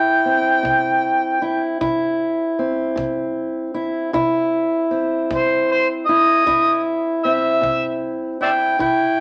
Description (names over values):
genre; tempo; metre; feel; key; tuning
acoustic country blues, solo or duo; 52 BPM (dotted quarters); 12/8; straight; C major; A4 = 440 Hz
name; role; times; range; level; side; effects
overdriven harmonica; melody; 0.0-9.2 s; C5 to G5; -19 LUFS; equal; none
fingerpicked steel-string acoustic guitar; accompaniment; 0.0-9.2 s; C3 to E4; -22 LUFS; equal; none
kick drum; drums; 0.7-9.0 s; none; -40 LUFS; equal; none
room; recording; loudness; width
wet club reverb, RT60 0.9 s; none; -19 LUFS; mono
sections
0.0-9.2 A section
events
none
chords
0.0 C